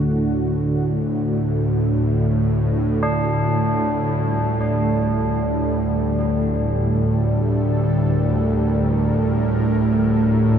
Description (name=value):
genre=dark ambient drone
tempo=free time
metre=none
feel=none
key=unclear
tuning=A4 = 441 Hz
part: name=sweeping resonant pad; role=sustained chords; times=0.0-10.6 s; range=D3 to Bb4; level=-24 LUFS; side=equal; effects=chorus
part: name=bowed-like drone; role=drone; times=0.0-10.6 s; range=D2 to A2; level=-19 LUFS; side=right 1 dB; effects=built-in reverb
part: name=tubular bells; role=arpeggios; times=3.0-10.6 s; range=D4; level=-27 LUFS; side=equal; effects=analog delay
room=wet huge ambient reverb, RT60 8.9 s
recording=dreamy mix soaked in reverb, cassette tape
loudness=-18 LUFS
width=side -8 dB against mid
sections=0.0-10.6 A section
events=filter sweep on synth drone 0.0-10.6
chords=0.0 D; 3.0 Gm/D